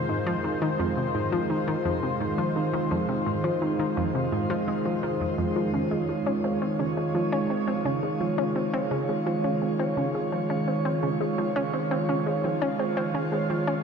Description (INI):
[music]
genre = ambient, sequencer-driven space music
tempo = 85 BPM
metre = 4/4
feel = straight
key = unclear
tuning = A4 = 441 Hz
[part]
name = sweeping resonant pad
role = sustained chords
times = 0.0-13.8 s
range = Eb3 to Db5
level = -26 LUFS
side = right 1 dB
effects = chorus, shimmer reverb
[part]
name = bubbling stepped-filter texture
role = texture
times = 0.0-13.8 s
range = C4 to C6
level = -39 LUFS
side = equal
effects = chorus, built-in reverb, shimmer reverb
[part]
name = analog pluck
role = riff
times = 0.1-13.7 s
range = F2 to Db4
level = -28 LUFS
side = equal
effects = chorus, tape echo, shimmer reverb
[sound]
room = wet cathedral reverb, RT60 6.0 s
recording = dreamy mix soaked in reverb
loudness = -24 LUFS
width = side -6 dB against mid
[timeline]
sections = 0.0-13.8 A section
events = none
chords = 0.0 Fm7; 5.7 Dbadd9